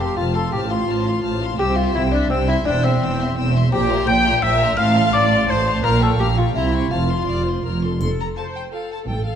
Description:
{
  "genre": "cinematic, playful, whimsical film cue",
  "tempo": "169 BPM",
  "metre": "3/4",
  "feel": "straight",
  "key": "F major",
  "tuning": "A4 = 439 Hz",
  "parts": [
    { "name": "rich chamber violin section", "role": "melody", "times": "0.0-9.4 s", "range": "F5 to F6", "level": "-32 LUFS", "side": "left 6 dB", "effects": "none" },
    { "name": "xylophone with soft rubber mallets", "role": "melody", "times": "0.0-7.8 s", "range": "C5 to G6", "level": "-25 LUFS", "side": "left 3 dB", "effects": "none" },
    { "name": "clear clarinet", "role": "second line", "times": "0.0-7.8 s", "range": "C4 to G5", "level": "-23 LUFS", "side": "left 2 dB", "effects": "none" },
    { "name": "rich chamber violin section", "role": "second line", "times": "0.0-9.0 s", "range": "F4 to C6", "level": "-28 LUFS", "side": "left 5 dB", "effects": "none" },
    { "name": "rich studio viola section", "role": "accompaniment", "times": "0.0-9.4 s", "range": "C4 to G5", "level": "-25 LUFS", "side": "right 1 dB", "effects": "none" },
    { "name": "warm chamber cello section", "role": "bass", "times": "0.0-9.4 s", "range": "E2 to C3", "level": "-24 LUFS", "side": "right 3 dB", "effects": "none" },
    { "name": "warm chamber double bass section", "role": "bass", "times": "0.0-9.4 s", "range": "E1 to C2", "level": "-22 LUFS", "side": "right 1 dB", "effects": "none" },
    { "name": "triangle", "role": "percussion", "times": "8.0-8.7 s", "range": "none", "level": "-47 LUFS", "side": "equal", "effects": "none" }
  ],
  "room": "moderate scoring stage reverb, RT60 1.6 s",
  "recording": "dark, warm production",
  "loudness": "-16 LUFS",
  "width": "side -8 dB against mid",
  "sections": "0.0-8.0 A section; 8.0-9.4 A section",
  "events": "none",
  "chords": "0.0 F; 0.5 F/A; 1.6 C; 2.7 C/E; 3.7 C7/Bb; 4.8 F/A; 5.8 Gm7b5/Bb; 6.6 C7b9; 6.9 F"
}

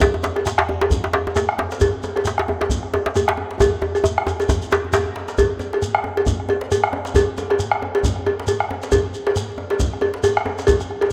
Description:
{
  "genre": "west african traditional, West African drum ensemble",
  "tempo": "135 BPM",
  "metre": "4/4",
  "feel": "swing 57% on 16ths",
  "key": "none",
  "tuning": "none",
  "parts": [
    { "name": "bombo", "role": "percussion", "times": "0.0-11.1 s", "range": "none", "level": "-26 LUFS", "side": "equal", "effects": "none" },
    { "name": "cowbell", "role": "percussion", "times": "0.0-11.1 s", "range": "none", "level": "-23 LUFS", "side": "equal", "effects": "none" },
    { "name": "djembe", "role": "percussion", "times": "0.0-11.1 s", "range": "none", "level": "-30 LUFS", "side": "equal", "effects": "none" },
    { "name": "djembe", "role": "percussion", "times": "0.0-5.1 s", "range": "none", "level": "-25 LUFS", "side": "equal", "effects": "none" },
    { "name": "shekere", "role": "percussion", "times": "0.0-10.8 s", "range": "none", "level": "-31 LUFS", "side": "equal", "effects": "none" }
  ],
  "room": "moderate plate reverb, RT60 2.7 s",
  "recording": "rough home demo mix",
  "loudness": "-20 LUFS",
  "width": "mono",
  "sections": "0.0-5.4 A section; 5.4-11.1 B section",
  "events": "speeding up 0.0-11.1; drum fill 3.6-5.4",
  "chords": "none"
}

